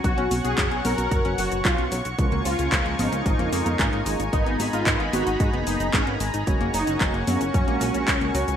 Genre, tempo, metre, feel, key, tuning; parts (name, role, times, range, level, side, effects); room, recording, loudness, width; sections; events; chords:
italo disco; 112 BPM; 4/4; straight; G# dorian; A4 = 440 Hz
wide unison lead; melody; 0.0-8.5 s; C#4 to A#4; -28 LUFS; equal; ensemble chorus, ping-pong delay
lush unison pad; sustained chords; 0.0-8.6 s; D#4 to C#6; -30 LUFS; equal; chorus
analog pluck; arpeggios; 0.0-8.6 s; E#3 to A#4; -32 LUFS; left 5 dB; chorus, ping-pong delay
mellow synth brass; stabs; 0.0-8.4 s; G#2 to G#4; -32 LUFS; right 3 dB; chorus
chorused synth bass; bass; 0.0-8.6 s; F#1 to G#2; -28 LUFS; equal
electronic kick drum; drums; 0.0-8.2 s; -24 LUFS; equal
house drum kit; drums; 0.0-8.6 s; cabasa, congas, handclaps, hi-hat; -27 LUFS; equal; gated reverb
moderate plate reverb, RT60 2.0 s; bright 1980s-style digital production, vinyl crackle; -20 LUFS; side -9 dB against mid
0.0-8.6 A section
0.0 Bsus2; 2.2 C#6; 4.3 G#madd9; 6.5 F#add9